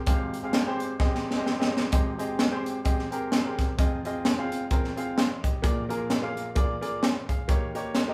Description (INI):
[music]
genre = uptempo gospel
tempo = 129 BPM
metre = 4/4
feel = swing 57% on 8ths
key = Ab major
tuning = A4 = 440 Hz
[part]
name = clear baby grand piano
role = accompaniment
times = 0.0-8.1 s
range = F1 to C6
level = -32 LUFS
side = equal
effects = none
[part]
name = crisp fusion drum kit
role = drums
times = 0.1-8.1 s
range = hi-hat, kick drum, snare drum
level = -28 LUFS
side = equal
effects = none
[sound]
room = wet large studio reverb, RT60 0.9 s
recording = band playing live in one room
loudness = -27 LUFS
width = mono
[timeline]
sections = 0.0-1.9 A section; 1.9-8.1 B section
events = drum fill 1.0-1.9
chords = 0.0 Abmaj7; 3.8 Fm7; 5.6 Bb7; 7.5 Eb7